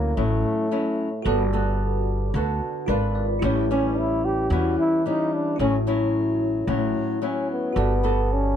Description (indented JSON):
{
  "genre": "bossa nova",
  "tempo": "111 BPM",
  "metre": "4/4",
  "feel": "straight",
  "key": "unclear",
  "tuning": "A4 = 440 Hz",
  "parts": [
    { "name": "breathy trombone", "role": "melody", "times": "0.0-8.6 s", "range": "A3 to G4-20c", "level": "-25 LUFS", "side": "equal", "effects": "none" },
    { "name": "bell-like tine electric piano", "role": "accompaniment", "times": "0.0-8.6 s", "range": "E4 to B5", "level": "-30 LUFS", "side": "right 2 dB", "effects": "phaser" },
    { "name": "nylon-string guitar", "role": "accompaniment", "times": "0.0-8.6 s", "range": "A2 to B4", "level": "-24 LUFS", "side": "left 2 dB", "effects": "none" },
    { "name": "upright bass", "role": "bass", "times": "0.0-8.6 s", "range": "G1 to E2", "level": "-25 LUFS", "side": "equal", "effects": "none" }
  ],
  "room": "little or no reverb",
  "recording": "close, detailed microphones",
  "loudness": "-21 LUFS",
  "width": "side -9 dB against mid",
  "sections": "0.0-8.6 A section",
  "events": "trombone solo 0.0-8.6; tine electric piano fill 2.6-3.4",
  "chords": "0.0 Dmaj9; 1.3 Gmaj9; 2.9 G#dim7; 3.4 A7; 5.6 A6; 7.8 Gmaj9",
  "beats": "0.17 0.71 | 1.25 1.80 2.34 2.88 | 3.42 3.97 4.51 5.05 | 5.59 6.14 6.68 7.22 | 7.76 8.31"
}